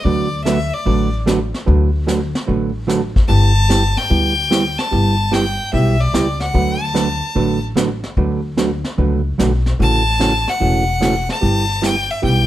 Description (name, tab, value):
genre	country, western swing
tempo	148 BPM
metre	4/4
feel	swing 66% on 8ths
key	D major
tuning	A4 = 443 Hz
part	clear fiddle	melody	0.0-12.5 s	D5 to A5	-20 LUFS	left 2 dB	plate reverb
part	hollow-body jazz guitar	accompaniment	0.0-12.5 s	C#3 to B4	-19 LUFS	right 4 dB	none
part	upright bass	bass	0.0-12.5 s	E1 to D2	-18 LUFS	left 1 dB	none
part	vintage brush drum kit	drums	0.0-12.5 s	brushed snare drum, hi-hat, kick drum, snare drum	-20 LUFS	left 1 dB	none
room	light reverb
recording	none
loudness	-14 LUFS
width	side -13 dB against mid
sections	0.0-12.5 A section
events	none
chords	0.0 D6; 3.3 G6; 6.5 D6; 9.8 A6; 11.4 G6